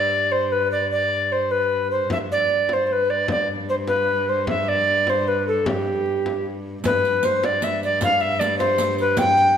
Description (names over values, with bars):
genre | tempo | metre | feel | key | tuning
medieval dance | 101 BPM (dotted quarters) | 6/8 | straight | G major | A4 = 440 Hz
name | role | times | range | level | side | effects
reedy alto recorder | melody | 0.0-9.6 s | G4 to G5 | -19 LUFS | equal | none
rich viola da gamba | drone | 0.0-9.6 s | G2 | -29 LUFS | left 1 dB | none
frame drum | percussion | 2.1-9.5 s | none | -30 LUFS | left 2 dB | none
riq | percussion | 6.8-9.5 s | none | -31 LUFS | right 4 dB | none
room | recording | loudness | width
wet recital hall reverb, RT60 1.5 s | none | -19 LUFS | side -8 dB against mid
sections
0.0-6.8 A section; 6.8-9.6 B section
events
none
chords
none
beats
0.30 | 0.90 1.50 | 2.10 2.69 | 3.29 3.88 | 4.48 5.07 | 5.66 6.25 | 6.84 7.43 | 8.02 8.60 | 9.19